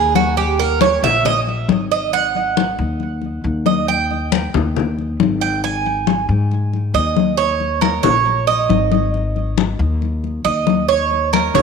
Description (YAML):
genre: latin, Cuban son and guajira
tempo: 137 BPM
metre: 4/4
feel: straight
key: unclear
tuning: A4 = 438 Hz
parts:
  - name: Cuban tres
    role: arpeggios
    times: 0.0-11.6 s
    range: F#4 to G#5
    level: -17 LUFS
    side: right 8 dB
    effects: tape echo
  - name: upright bass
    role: bass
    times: 0.0-11.6 s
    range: G#1 to G#2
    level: -20 LUFS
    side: left 2 dB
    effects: none
  - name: congas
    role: percussion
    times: 0.2-11.6 s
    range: none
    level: -19 LUFS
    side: left 12 dB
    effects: none
room: wet echo chamber reverb, RT60 1.5 s, small room reverb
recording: 1960s-style stereo with parts hard left and right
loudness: -15 LUFS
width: side -5 dB against mid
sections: 0.0-11.6 A section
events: Cuban tres solo 0.0-11.6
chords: 0.4 D#5; 2.1 G#5; 7.4 D#5; 9.1 G#5; 10.9 D#5